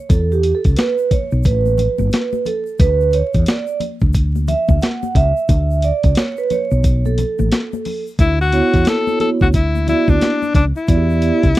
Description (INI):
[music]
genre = hip hop, jazz-hop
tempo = 89 BPM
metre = 4/4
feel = swing 62% on 16ths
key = D major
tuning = A4 = 440 Hz
[part]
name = vibraphone with soft mallets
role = accompaniment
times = 0.0-11.4 s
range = B3 to F#5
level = -19 LUFS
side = right 5 dB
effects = none
[part]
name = woody fretless electric bass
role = bass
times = 0.1-11.5 s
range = G1 to E2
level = -16 LUFS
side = equal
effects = wide subtle chorus
[part]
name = boom bap sampler-style drum kit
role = drums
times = 0.1-11.6 s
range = hi-hat, kick drum, snare drum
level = -16 LUFS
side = equal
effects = none
[part]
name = egg shaker and congas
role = percussion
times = 0.1-11.6 s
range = none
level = -29 LUFS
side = left 10 dB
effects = none
[part]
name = breathy alto saxophone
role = melody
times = 8.2-11.6 s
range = D4 to A4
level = -18 LUFS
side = left 3 dB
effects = none
[sound]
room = little or no reverb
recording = dry, close 1970s-style studio recording, vinyl crackle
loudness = -14 LUFS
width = side -16 dB against mid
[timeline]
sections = 0.0-8.2 A section; 8.2-11.6 B section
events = vibraphone solo 0.0-8.2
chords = 0.1 E5; 1.4 Asus2; 2.8 Dsus2; 8.2 Dmaj13; 10.9 Em7